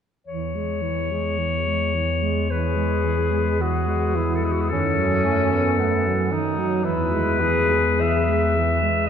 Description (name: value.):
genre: classical, lyrical piece for single-reed quartet.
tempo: 50-58 BPM.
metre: 4/4.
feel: rubato.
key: E major.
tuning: A4 = 440 Hz.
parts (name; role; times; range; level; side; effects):
bright clarinet; melody; 0.3-9.1 s; F#4 to E5; -24 LUFS; left 3 dB; none.
mellow alto saxophone; second line; 0.3-9.1 s; D#3 to B3; -26 LUFS; right 6 dB; none.
mellow bass clarinet; bass; 0.3-9.0 s; E2 to F#2; -25 LUFS; left 1 dB; none.
warm tenor saxophone; accompaniment; 2.5-8.8 s; B3 to G#4; -25 LUFS; left 2 dB; none.
room: wet cathedral reverb, RT60 6.5 s.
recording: recorded in a church or concert hall.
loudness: -19 LUFS.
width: side -8 dB against mid.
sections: 0.3-9.1 A section.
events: none.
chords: 0.3 E; 4.7 B7/F#; 6.9 E.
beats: | 0.27 1.40 2.51 3.61 | 4.72 5.80 6.85 8.01 | 9.09.